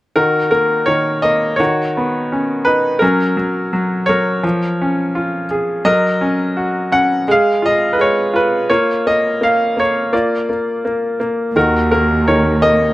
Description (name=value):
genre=folk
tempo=84 BPM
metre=4/4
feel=straight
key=Eb minor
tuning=A4 = 437 Hz
part: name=bright grand piano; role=melody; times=0.2-12.9 s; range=Eb3 to Gb5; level=-13 LUFS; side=equal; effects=none
part: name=muted cello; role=bass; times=11.6-12.9 s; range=Eb2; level=-16 LUFS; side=right 1 dB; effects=none
room=light reverb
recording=close, detailed microphones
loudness=-13 LUFS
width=side -17 dB against mid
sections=0.2-12.9 A section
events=none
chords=0.2 Ebm; 1.6 Badd9/D#; 3.0 Gb; 4.4 Db6/F; 5.9 Ebm7/Gb; 7.3 Abm6; 8.7 Bb5; 11.6 Ebm